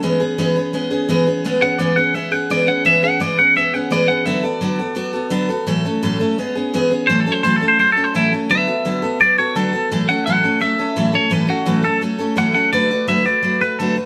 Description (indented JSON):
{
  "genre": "rock",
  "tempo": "170 BPM",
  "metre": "4/4",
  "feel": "straight",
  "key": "A major",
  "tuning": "A4 = 445 Hz",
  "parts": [
    { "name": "picked steel-string acoustic guitar", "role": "accompaniment", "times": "0.0-14.1 s", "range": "A2 to B4", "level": "-20 LUFS", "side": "equal", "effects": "none" },
    { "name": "twangy electric guitar", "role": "melody", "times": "1.6-14.0 s", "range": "E4 to F#5", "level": "-19 LUFS", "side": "equal", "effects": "phaser" }
  ],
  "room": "moderate stone room reverb, RT60 1.1 s",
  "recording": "band playing live in one room, lossy compression artefacts",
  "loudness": "-17 LUFS",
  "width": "mono",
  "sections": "0.0-7.1 A section; 7.1-14.1 B section",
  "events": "clean electric guitar solo 7.1-14.1",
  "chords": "0.0 E6; 4.3 D6; 5.7 A6; 6.4 E6; 7.1 A6; 8.5 D6; 9.9 A6; 12.7 D6"
}